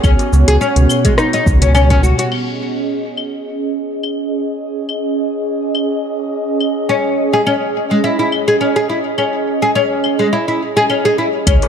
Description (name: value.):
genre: organic downtempo.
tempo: 105 BPM.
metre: 4/4.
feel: swing 54% on 16ths.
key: unclear.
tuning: A4 = 442 Hz.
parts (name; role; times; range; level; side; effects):
airy breathy pad; sustained chords; 0.0-11.7 s; C#3 to D#5; -19 LUFS; right 2 dB; chorus, sidechain pumping.
oud; arpeggios; 0.0-2.3, 6.9-11.7 s; G#3 to G#4; -15 LUFS; left 2 dB; ping-pong delay.
round analog bass; bass; 0.0-2.1, 11.5-11.6 s; C#2; -11 LUFS; equal; sidechain pumping.
electronic kick drum; drums; 0.0-2.0, 11.5-11.6 s; none; -14 LUFS; equal; none.
organic electronic drum kit; drums; 0.0-11.7 s; claves, crash cymbal, hi-hat, rim click, shaker; -22 LUFS; left 4 dB; low-pass filter on perc, low-pass filter on hats, low-pass filter on snare, low-pass filter on cymbals.
darbuka; percussion; 0.2-2.0, 11.6-11.7 s; none; -23 LUFS; left 1 dB; none.
room: moderate echo chamber reverb, RT60 2.5 s.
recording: dark, warm production.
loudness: -13 LUFS.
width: side -7 dB against mid.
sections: 0.0-2.3 A section; 2.3-11.5 B section.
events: filter sweep on analog synth pad 2.3-11.5.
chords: 0.0 B5; 2.3 C#sus2.